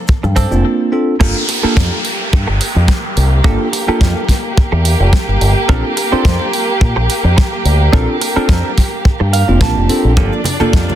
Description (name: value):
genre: nu-disco, nu disco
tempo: 107 BPM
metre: 4/4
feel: swing 54% on 16ths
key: G minor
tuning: A4 = 440 Hz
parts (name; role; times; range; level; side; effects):
- dark studio violin section; sustained chords; 0.0-11.0 s; Bb3 to D5; -20 LUFS; right 1 dB; sidechain pumping
- direct-recorded clean electric guitar; riff; 0.1-11.0 s; Bb3 to A5; -21 LUFS; right 4 dB; wide subtle chorus, ping-pong delay
- kick drum; drums; 0.1-10.9 s; none; -12 LUFS; equal; none
- maracas and congas; percussion; 0.1-0.6, 10.2-11.0 s; none; -22 LUFS; equal; none
- fingered electric bass with an envelope filter; bass; 0.2-10.9 s; F1 to Bb2; -14 LUFS; equal; none
- pop drum kit; drums; 0.4-10.9 s; crash cymbal, hi-hat, snare drum; -22 LUFS; right 1 dB; none
- bell-like tine electric piano; accompaniment; 0.5-10.7 s; Bb3 to A4; -18 LUFS; equal; sidechain pumping, ping-pong delay
- downlifter; sound effects; 1.2-5.7 s; none; -23 LUFS; equal; none
room: light reverb, studio ambience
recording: dense, heavily limited modern master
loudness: -11 LUFS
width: side -11 dB against mid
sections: 0.0-1.2 A section; 1.2-11.0 B section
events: drop 1.2-11.0; clean electric guitar fill 9.1-10.2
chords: 0.0 Gm9; 5.7 Bbmaj9; 10.2 Gm9